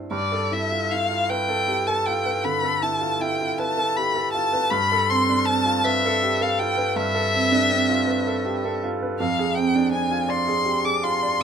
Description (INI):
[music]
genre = classical, impressionist duo for violin and grand piano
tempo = 53 BPM (dotted quarters)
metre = 12/8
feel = rubato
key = unclear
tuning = A4 = 440 Hz
[part]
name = clear baby grand piano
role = accompaniment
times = 0.0-11.4 s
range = F2 to D5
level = -23 LUFS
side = right 3 dB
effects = none
[part]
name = rich violin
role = melody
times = 0.1-11.4 s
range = D5 to D6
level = -22 LUFS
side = left 2 dB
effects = none
[sound]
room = moderate studio ambience, RT60 0.5 s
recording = minimal, uncompressed stereo recording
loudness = -20 LUFS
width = side -7 dB against mid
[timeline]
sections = 0.1-11.4 A section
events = none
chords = 0.1 G13; 4.7 Fmaj7#11/G; 9.2 Fm6